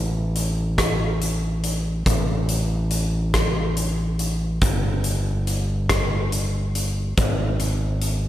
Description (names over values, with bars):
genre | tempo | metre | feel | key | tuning
post-rock | 47 BPM (dotted quarters) | 6/8 | straight | unclear | A4 = 440 Hz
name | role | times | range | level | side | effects
growling fingered electric bass | bass | 0.0-8.3 s | G1 to A1 | -23 LUFS | equal | overdrive
big rock drum kit | drums | 0.4-8.2 s | hi-hat, kick drum, rim click | -24 LUFS | equal | none
room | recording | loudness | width
little or no reverb | none | -20 LUFS | side -13 dB against mid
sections
0.0-8.3 A section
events
none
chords
none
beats
0.79 | 2.07 3.35 | 4.62 5.90 | 7.18